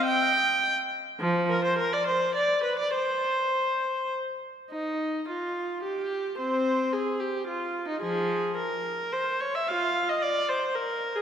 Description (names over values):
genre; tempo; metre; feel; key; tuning
classical, baroque-style suite movement for unaccompanied viola; 97-113 BPM; 3/4; rubato; C minor; A4 = 440 Hz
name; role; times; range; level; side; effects
warm viola; solo; 0.0-11.2 s; F3 to G5; -25 LUFS; equal; none
room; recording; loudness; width
wet church reverb, RT60 2.6 s; recorded in a church or concert hall; -25 LUFS; side -8 dB against mid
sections
0.0-4.7 A section; 4.7-11.2 B section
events
none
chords
none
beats
0.06 0.61 | 1.20 1.78 2.35 | 2.93 3.52 4.12 | 4.71 5.28 5.83 | 6.37 6.92 7.47 | 8.01 8.57 9.12 | 9.68 10.22 10.76